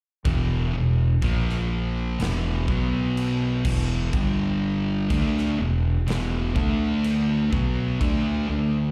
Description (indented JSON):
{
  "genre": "stoner and doom metal",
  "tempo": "62 BPM",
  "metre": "4/4",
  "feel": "straight",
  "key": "E minor",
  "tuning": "A4 = 441 Hz",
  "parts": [
    { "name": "thick fuzz guitar", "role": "riff", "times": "0.2-8.9 s", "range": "E2 to D4", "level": "-30 LUFS", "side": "equal", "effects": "distortion" },
    { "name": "growling fingered electric bass", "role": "bass", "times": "0.2-8.9 s", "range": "E1 to D2", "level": "-30 LUFS", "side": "equal", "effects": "overdrive" },
    { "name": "thick fuzz guitar", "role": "riff", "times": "0.3-8.9 s", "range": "E2 to D4", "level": "-28 LUFS", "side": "equal", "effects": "distortion" },
    { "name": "big rock drum kit", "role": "drums", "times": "0.3-8.2 s", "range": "crash cymbal, kick drum, snare drum", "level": "-32 LUFS", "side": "equal", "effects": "none" }
  ],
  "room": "small room ambience",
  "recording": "live gig heard through the venue's PA, club reverb",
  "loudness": "-24 LUFS",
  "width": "mono",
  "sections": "0.3-8.9 A section",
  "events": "none",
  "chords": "0.3 E5; 1.2 A#5; 2.2 E5; 2.7 B5; 3.6 E5; 4.1 G5; 5.1 E5; 6.6 D5; 7.5 B5; 8.0 D5"
}